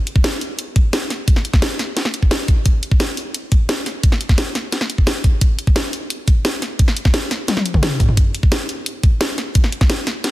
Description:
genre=drum and bass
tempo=174 BPM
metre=4/4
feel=straight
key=none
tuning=none
part: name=drum and bass drum kit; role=drums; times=0.1-10.3 s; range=hi-hat, snare drum, toms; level=-20 LUFS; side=equal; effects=studio reverb
part: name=electronic kick drum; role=drums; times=0.2-9.9 s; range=none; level=-14 LUFS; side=equal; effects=studio reverb
room=digital ambience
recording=dense, heavily limited modern master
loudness=-15 LUFS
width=side -17 dB against mid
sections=0.0-10.3 A section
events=drum fill 7.5-8.2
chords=none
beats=0.24 0.59 0.93 | 1.28 1.62 1.97 2.31 | 2.66 3.00 3.35 3.69 | 4.04 4.38 4.72 5.07 | 5.41 5.76 6.10 6.45 | 6.79 7.14 7.48 7.83 | 8.17 8.52 8.86 9.21 | 9.55 9.90 10.24

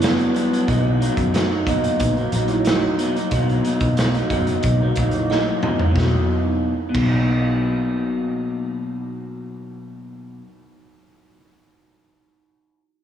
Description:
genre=indie pop, bedroom pop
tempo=91 BPM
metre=4/4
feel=straight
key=B major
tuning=A4 = 439 Hz
part: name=kalimba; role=second line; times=0.0-7.9 s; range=D4 to D#5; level=-26 LUFS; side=right 6 dB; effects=lush chorus, analog delay, slapback echo
part: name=electric guitar through a small old amp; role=accompaniment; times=0.0-10.6 s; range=G2 to D#4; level=-22 LUFS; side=left 2 dB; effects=wide subtle chorus, warbly pitch drift, slapback echo
part: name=vintage muted picked electric bass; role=bass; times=0.0-10.1 s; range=F#1 to F#2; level=-23 LUFS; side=equal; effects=none
part: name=raw garage drum kit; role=drums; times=0.0-7.1 s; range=crash cymbal, hi-hat, kick drum, snare drum, toms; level=-23 LUFS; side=right 1 dB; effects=none
room=moderate lush hall reverb, RT60 2.9 s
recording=big arena sound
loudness=-18 LUFS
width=side -9 dB against mid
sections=0.0-6.0 A section; 6.0-8.6 B section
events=drum fill 5.3-6.0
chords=0.0 Gmaj7; 0.7 Bmaj7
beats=0.02 | 0.68 1.34 2.00 2.66 | 3.32 3.98 4.64 5.30 | 5.96 6.62 7.28 7.94

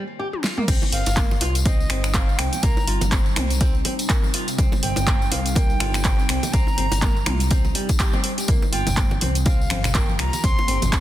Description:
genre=afro house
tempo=123 BPM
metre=4/4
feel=swing 58% on 16ths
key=C minor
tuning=A4 = 440 Hz
part: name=flamenco guitar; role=arpeggios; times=0.0-11.0 s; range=G3 to G4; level=-31 LUFS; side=equal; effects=sidechain pumping, ping-pong delay
part: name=deep house drum kit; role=drums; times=0.3-11.0 s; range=crash cymbal, finger snaps, handclaps, hi-hat, snare drum, toms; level=-25 LUFS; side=equal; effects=overdrive
part: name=ethereal airy pad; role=sustained chords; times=1.6-11.0 s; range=C3 to G4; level=-32 LUFS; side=equal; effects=ensemble chorus, built-in reverb, phaser, sidechain pumping
part: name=smooth gliding synth bass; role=bass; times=0.7-11.0 s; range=G1 to C2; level=-25 LUFS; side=equal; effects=sidechain pumping
part: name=electronic kick drum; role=drums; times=0.7-11.0 s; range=none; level=-20 LUFS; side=equal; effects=overdrive
part: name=tambourine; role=percussion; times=0.7-11.0 s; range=none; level=-34 LUFS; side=left 3 dB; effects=none
part: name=bongos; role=percussion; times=0.8-10.9 s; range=none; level=-32 LUFS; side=right 3 dB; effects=none
part: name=breathy bright jazz flute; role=melody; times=0.9-10.9 s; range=Eb5 to C6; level=-30 LUFS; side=right 1 dB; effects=ping-pong delay
part: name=congas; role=percussion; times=8.5-10.9 s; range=none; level=-30 LUFS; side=left 2 dB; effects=none
room=little or no reverb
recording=dense, heavily limited modern master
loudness=-18 LUFS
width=side -13 dB against mid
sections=0.7-11.0 A section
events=break 0.0-0.7; drum fill 0.3-0.7; drop 0.7-11.0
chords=0.0 Eb (rootless); 0.7 Cm7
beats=0.19 | 0.68 1.17 1.66 2.14 | 2.63 3.12 3.61 4.09 | 4.58 5.07 5.56 6.05 | 6.53 7.02 7.51 8.00 | 8.49 8.97 9.46 9.95 | 10.44 10.93

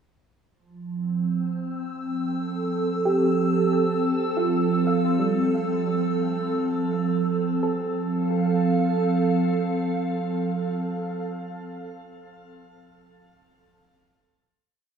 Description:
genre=ambient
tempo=free time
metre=none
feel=none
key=F major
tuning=A4 = 440 Hz
part: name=soft additive organ-like pad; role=sustained chords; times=0.5-11.1 s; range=F3 to E6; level=-23 LUFS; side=right 2 dB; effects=ensemble chorus, built-in reverb, shimmer reverb
part: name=soft round pluck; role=arpeggios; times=3.1-10.7 s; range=G3 to F5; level=-30 LUFS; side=right 3 dB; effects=analog chorus, dub echo, shimmer reverb
room=wet plate reverb, RT60 3.3 s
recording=echo-heavy mix, small room ambience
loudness=-22 LUFS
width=side -7 dB against mid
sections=0.5-7.6 A section; 7.6-11.2 final chord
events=none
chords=0.5 Fmaj7; 7.6 F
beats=free time

